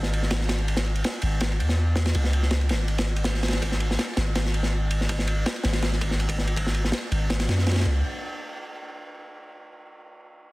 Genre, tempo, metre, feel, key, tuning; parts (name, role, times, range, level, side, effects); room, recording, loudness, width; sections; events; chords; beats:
drum and bass, jungle; 163 BPM; 4/4; straight; A4 = 440 Hz
long sustained 808-style bass; bass; 0.0-8.0 s; G#1 to F#2; -24 LUFS; equal
crunchy breakbeat drum kit; drums; 0.0-7.9 s; kick drum, ride cymbal, snare drum; -27 LUFS; equal; high-pass filter on kick, high-pass filter on cymbals, high-pass filter on snare, high-pass filter on room
little or no reverb; dense, heavily limited modern master; -22 LUFS; side -21 dB against mid
0.0-8.0 A section; 8.0-9.5 B section
0.31 | 0.68 1.04 1.41 1.78 | 2.15 2.52 2.88 3.25 | 3.62 3.99 4.36 4.73 | 5.09 5.46 5.83 6.20 | 6.57 6.93 7.30 7.67